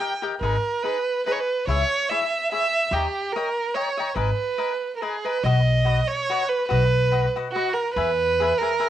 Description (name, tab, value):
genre	mexican folk, mariachi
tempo	143 BPM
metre	3/4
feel	rubato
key	G# minor, B major from 5.4 s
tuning	A4 = 444 Hz
part	rich violin	melody	0.0-8.9 s	F#4 to G5	-22 LUFS	right 3 dB	cassette tape
part	cavaquinho	accompaniment	0.0-8.9 s	D#4 to A#5	-29 LUFS	left 8 dB	cassette tape
part	upright bass	bass	0.4-8.5 s	G#1 to E2	-23 LUFS	left 2 dB	none
room	moderate studio reverb, RT60 0.6 s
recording	home recording on cassette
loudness	-20 LUFS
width	side -11 dB against mid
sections	0.0-5.4 A section; 5.4-8.9 B section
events	none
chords	0.4 G#m; 1.7 C#m; 2.9 D#7; 4.2 G#madd9; 5.4 B; 8.0 E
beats	| 0.41 0.83 1.25 | 1.67 2.09 2.51 | 2.92 3.33 3.75 | 4.16 4.58 5.01 | 5.44 5.87 6.29 | 6.71 7.12 7.54 | 7.96 8.38 8.79